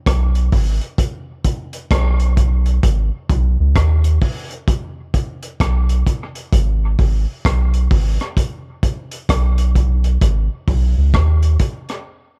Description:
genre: dub reggae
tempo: 65 BPM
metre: 4/4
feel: swing 63% on 16ths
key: G# minor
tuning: A4 = 441 Hz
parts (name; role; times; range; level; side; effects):
- soft dub sub bass; bass; 0.1-11.6 s; G#1 to D#2; -17 LUFS; equal; none
- crunchy breakbeat drum kit; drums; 0.1-12.1 s; hi-hat, kick drum, rim click; -21 LUFS; equal; none
room: little or no reverb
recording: none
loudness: -17 LUFS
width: mono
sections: 0.0-12.4 A section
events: break 12.1-12.4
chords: none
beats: 0.06 0.99 1.91 | 2.83 3.75 4.68 5.60 | 6.52 7.45 8.37 9.29 | 10.21 11.14

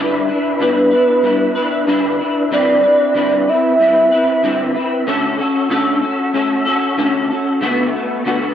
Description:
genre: indie pop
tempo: 94 BPM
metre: 4/4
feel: swing 55% on 16ths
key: D major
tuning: A4 = 438 Hz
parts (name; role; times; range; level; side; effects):
- electric guitar through a small old amp; accompaniment; 0.0-8.5 s; D3 to B4; -16 LUFS; left 1 dB; ensemble chorus, vibrato effect
- soft octave-layered synth lead; melody; 0.6-4.8 s; B4 to E5; -14 LUFS; right 1 dB; lush chorus, tape echo
room: moderate spring reverb, RT60 2.3 s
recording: none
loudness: -13 LUFS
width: side -9 dB against mid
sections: 0.0-8.5 A section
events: none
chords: 0.0 G6/D; 2.5 Cmaj7/D; 5.1 Dmaj7; 7.6 Bm7/D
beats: 0.60 1.24 1.88 | 2.52 3.15 3.79 4.43 | 5.07 5.71 6.35 6.99 | 7.62 8.26

